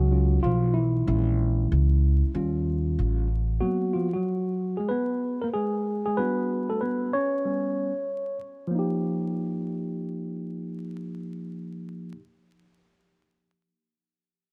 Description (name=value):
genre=hip hop, jazz-hop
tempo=94 BPM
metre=4/4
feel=swing 64% on 16ths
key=unclear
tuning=A4 = 440 Hz
part: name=tine electric piano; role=accompaniment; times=0.0-12.2 s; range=Fb3 to C#5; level=-29 LUFS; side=equal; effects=low-pass filter
part: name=upright bass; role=bass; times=0.0-3.6 s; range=A1 to Eb2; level=-25 LUFS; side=equal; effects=none
room=light reverb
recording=dark, warm production, vinyl crackle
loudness=-27 LUFS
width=mono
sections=0.0-8.7 A section; 8.7-11.3 B section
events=tine electric piano solo 0.0-8.7; filter sweep on tine electric piano 0.0-8.7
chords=0.0 Ebm7; 1.1 Bbm7b5; 2.3 Eb7; 3.6 Abm7; 6.2 Gmaj9#11; 7.5 Bsus2; 8.7 Eb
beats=0.43 | 1.07 1.71 2.35 2.98 | 3.62 4.26 4.90 5.54 | 6.17 6.81 7.45 8.09 | 8.73 9.37 10.00 10.64